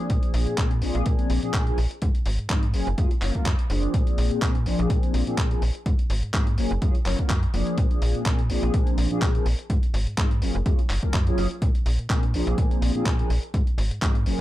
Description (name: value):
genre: filtered disco house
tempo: 125 BPM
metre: 4/4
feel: swing 54% on 16ths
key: Bb mixolydian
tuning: A4 = 437 Hz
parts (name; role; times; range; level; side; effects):
- mellow synth brass; accompaniment; 0.0-14.4 s; F3 to Db5; -28 LUFS; left 1 dB; chorus, phaser, sidechain pumping, low-pass filter
- slap-like FM bass; bass; 0.1-14.3 s; Gb1 to Bb2; -26 LUFS; equal; sidechain pumping, low-pass filter
- dusty soul sampler-style drum kit; drums; 0.1-14.4 s; handclaps, hi-hat; -32 LUFS; equal; sidechain pumping on hats
- electronic kick drum; drums; 0.1-14.1 s; none; -23 LUFS; equal; none
room: digital ambience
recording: dark, warm production, faint mains hum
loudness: -21 LUFS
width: side -15 dB against mid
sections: 0.0-14.4 A section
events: none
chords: 0.1 Bb9; 2.0 Ab69; 2.7 Gbmaj9; 3.9 Bb9; 5.9 Ab69; 6.6 Gbmaj9; 7.8 Bb9; 9.7 Ab69; 10.4 Gbmaj9; 11.6 Bb9; 13.5 Ab69